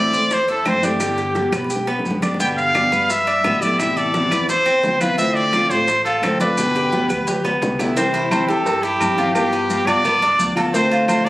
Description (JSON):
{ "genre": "latin, Cuban son and guajira", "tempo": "172 BPM", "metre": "4/4", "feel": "straight", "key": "unclear", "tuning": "A4 = 440 Hz", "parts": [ { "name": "brilliant trumpet", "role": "melody", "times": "0.0-11.3 s", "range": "G4 to G5", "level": "-18 LUFS", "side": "equal", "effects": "plate reverb" }, { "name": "nylon-string guitar", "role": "accompaniment", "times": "0.0-11.3 s", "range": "B2 to G4", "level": "-23 LUFS", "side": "left 1 dB", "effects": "none" }, { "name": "Cuban tres", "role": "arpeggios", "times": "0.0-11.3 s", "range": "B3 to C5", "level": "-23 LUFS", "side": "right 1 dB", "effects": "none" }, { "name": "upright bass", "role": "bass", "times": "0.0-11.3 s", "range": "G1 to B2", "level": "-30 LUFS", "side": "equal", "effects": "none" }, { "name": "bongos and cowbell", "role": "percussion", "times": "0.1-11.3 s", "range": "none", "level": "-30 LUFS", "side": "left 2 dB", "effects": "none" }, { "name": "congas", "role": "percussion", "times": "0.1-11.3 s", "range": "none", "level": "-29 LUFS", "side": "equal", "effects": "none" }, { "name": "maracas", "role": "percussion", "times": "0.1-11.3 s", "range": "none", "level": "-33 LUFS", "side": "equal", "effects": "none" }, { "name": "timbales and agogo bells", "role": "percussion", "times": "0.3-11.3 s", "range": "none", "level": "-28 LUFS", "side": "right 2 dB", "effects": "none" }, { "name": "claves", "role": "percussion", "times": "0.7-11.3 s", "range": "none", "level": "-30 LUFS", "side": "equal", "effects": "none" } ], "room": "moderate studio reverb, RT60 0.8 s", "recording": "recorded on a phone in the room, club reverb", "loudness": "-16 LUFS", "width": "side -17 dB against mid", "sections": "0.0-8.0 A section; 8.0-11.3 B section", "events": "drum fill 1.5-2.4, 6.6-8.0", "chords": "0.0 Am; 1.0 G; 3.8 Amadd9; 5.2 Dm7; 6.6 G; 8.0 C; 9.4 G7; 10.7 Dm7", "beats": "0.31 0.66 | 1.01 1.35 1.70 2.05 | 2.40 2.75 3.10 3.44 | 3.79 4.14 4.49 4.84 | 5.18 5.53 5.88 6.23 | 6.58 6.92 7.27 7.62 | 7.96 8.31 8.66 9.01 | 9.35 9.70 10.05 10.40 | 10.74 11.09" }